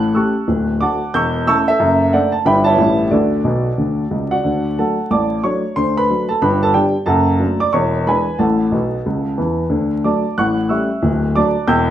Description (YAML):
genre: jazz, stride piano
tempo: 182 BPM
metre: 4/4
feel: swing 62% on 8ths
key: D major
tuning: A4 = 440 Hz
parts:
  - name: warm grand piano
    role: solo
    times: 0.0-11.9 s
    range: D1 to G6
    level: -14 LUFS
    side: equal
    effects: none
room: wet studio reverb, RT60 0.6 s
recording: rough home demo mix, vinyl crackle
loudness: -14 LUFS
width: side -11 dB against mid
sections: 0.0-4.4 A section; 4.4-11.9 A section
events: grand piano fill 3.4-4.4, 8.7-9.7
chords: 0.5 D; 1.1 A7/E; 1.8 D/F#; 2.5 Em/G; 2.8 A9; 3.1 D; 5.8 D7; 6.4 G; 7.1 D/F#; 7.7 E7; 8.4 F#madd11/A; 9.1 A; 9.7 D; 10.4 A7; 11.0 D